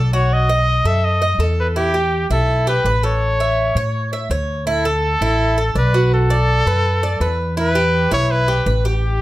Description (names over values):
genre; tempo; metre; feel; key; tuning
latin, Cuban son and guajira; 165 BPM; 4/4; straight; D major; A4 = 441 Hz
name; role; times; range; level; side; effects
Cuban tres; arpeggios; 0.0-9.2 s; E4 to E5; -22 LUFS; right 1 dB; none
upright bass; bass; 0.0-9.2 s; A1 to A2; -18 LUFS; equal; none
clear trumpet; melody; 0.1-9.2 s; G4 to E5; -19 LUFS; equal; plate reverb
room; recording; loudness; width
light reverb; none; -15 LUFS; side -16 dB against mid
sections
0.0-4.7 A section; 4.7-9.2 A section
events
none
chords
0.3 B7; 1.8 Em; 3.2 A; 4.7 Dadd9; 6.1 Bm; 7.6 Em